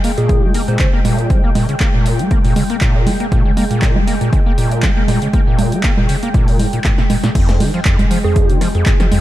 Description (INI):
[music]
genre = acid house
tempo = 119 BPM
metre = 4/4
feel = swing 54% on 16ths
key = unclear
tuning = A4 = 440 Hz
[part]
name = warm analog pad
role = sustained chords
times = 0.0-9.2 s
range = Ab3 to G5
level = -23 LUFS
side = right 1 dB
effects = chorus, sidechain pumping
[part]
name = overdriven acid bass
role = riff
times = 0.0-9.2 s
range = F2 to Bb3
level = -18 LUFS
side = equal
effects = analog chorus, sidechain pumping, ping-pong delay
[part]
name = punchy analog drum machine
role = drums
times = 0.0-9.2 s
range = congas, crash cymbal, handclaps, hi-hat, rim click, snare drum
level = -21 LUFS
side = right 2 dB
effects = overdrive
[part]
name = soft struck synth lead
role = melody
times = 0.2-0.9, 8.2-8.6 s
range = Ab4 to C5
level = -23 LUFS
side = right 2 dB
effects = chorus, cassette tape, digital delay
[part]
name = electronic kick drum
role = drums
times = 0.3-9.0 s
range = none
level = -15 LUFS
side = equal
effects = overdrive
[sound]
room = light reverb, digital ambience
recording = dark, warm production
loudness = -12 LUFS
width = side -14 dB against mid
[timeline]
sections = 0.0-7.4 A section; 7.4-9.2 B section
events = drum fill 6.8-7.4; drop 7.4-9.2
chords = 0.0 Bb7(no3); 7.4 Fm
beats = 0.29 0.80 | 1.30 1.80 2.31 2.81 | 3.32 3.82 4.33 4.83 | 5.33 5.84 6.34 6.85 | 7.35 7.86 8.36 8.86